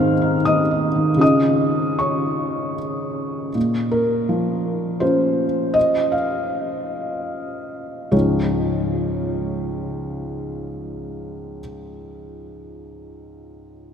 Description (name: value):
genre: neoclassical minimalist piano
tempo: 67-83 BPM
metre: 3/4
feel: rubato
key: Db major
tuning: A4 = 440 Hz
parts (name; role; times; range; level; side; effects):
- felt-muted upright piano; solo; 0.0-13.9 s; Db2 to F6; -19 LUFS; equal; none
room: wet cathedral reverb, RT60 6.6 s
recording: in a vast, echoing space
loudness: -18 LUFS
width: side -8 dB against mid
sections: 0.0-3.6 A section; 3.6-8.1 B section; 8.1-13.2 C section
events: slowing down 2.4-8.1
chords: 0.0 Ab; 1.2 Db; 3.6 Bbmadd9; 8.1 Db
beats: 0.46 | 1.21 1.99 2.77 | 3.55 4.29 5.02 | 5.76 6.50 7.27 | 8.13 8.97 9.81 | 10.64 11.48 12.33